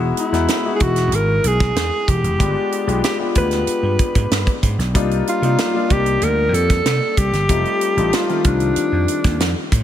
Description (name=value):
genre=polished 1980s jazz-funk pop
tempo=94 BPM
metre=4/4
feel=straight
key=unclear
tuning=A4 = 440 Hz
part: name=clear concert grand piano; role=accompaniment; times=0.0-9.8 s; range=Eb3 to G4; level=-22 LUFS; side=left 6 dB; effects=lush chorus
part: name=vintage slap bass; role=bass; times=0.0-9.8 s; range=E1 to C3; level=-20 LUFS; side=equal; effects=none
part: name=breathy alto saxophone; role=melody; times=0.2-9.7 s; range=D4 to B4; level=-20 LUFS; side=right 1 dB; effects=none
part: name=tight funk drum kit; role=drums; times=0.2-9.8 s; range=hi-hat, kick drum, snare drum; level=-20 LUFS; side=right 1 dB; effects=gated reverb
room=light reverb, small room ambience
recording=none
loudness=-15 LUFS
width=side -10 dB against mid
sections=0.0-9.8 A section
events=none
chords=0.0 Emaj9; 2.4 G7b9; 4.9 Cm11; 7.5 F7